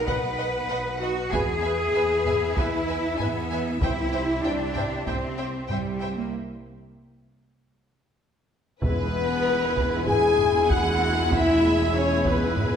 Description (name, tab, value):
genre	cinematic, epic orchestral film score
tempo	96 BPM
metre	4/4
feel	straight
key	E major from 8.8 s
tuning	A4 = 440 Hz
part	warm French horn section	sustained chords	0.0-12.8 s	G3 to B4	-26 LUFS	left 4 dB	none
part	warm symphonic string section	sustained chords	0.0-12.8 s	Cb4 to G#5	-34 LUFS	equal	none
part	rich symphonic cello section	bass	0.0-12.8 s	E2 to B4	-30 LUFS	right 1 dB	none
part	warm symphonic violin section	melody	0.1-12.8 s	B4 to G#5	-33 LUFS	left 2 dB	none
part	warm symphonic violin section	second line	0.1-12.8 s	B4 to G#5	-34 LUFS	equal	none
part	rich symphonic viola section	accompaniment	0.1-12.8 s	G#3 to C5	-32 LUFS	right 2 dB	none
part	rich symphonic double bass section	bass	0.1-12.8 s	E1 to E2	-32 LUFS	right 2 dB	none
part	taiko ensemble	drums	0.1-12.8 s	none	-30 LUFS	right 1 dB	none
part	clear trumpet section	stabs	8.8-12.8 s	B4 to G#5	-30 LUFS	right 2 dB	none
part	timpani	percussion	8.8-9.7 s	E2	-32 LUFS	equal	none
room	wet recital hall reverb, RT60 1.7 s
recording	recorded in a church or concert hall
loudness	-22 LUFS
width	side -8 dB against mid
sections	0.0-8.8 A section; 8.8-12.8 B section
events	break 6.3-8.8; drum fill 7.9-8.8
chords	0.0 B; 1.3 E; 3.8 C; 6.3 N.C.; 8.8 E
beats	0.07 0.69 | 1.32 1.94 2.57 3.19 | 3.82 4.44 5.07 5.69 | 6.32 6.94 7.57 8.19 | 8.82 9.44 10.07 10.69 | 11.32 11.94 12.57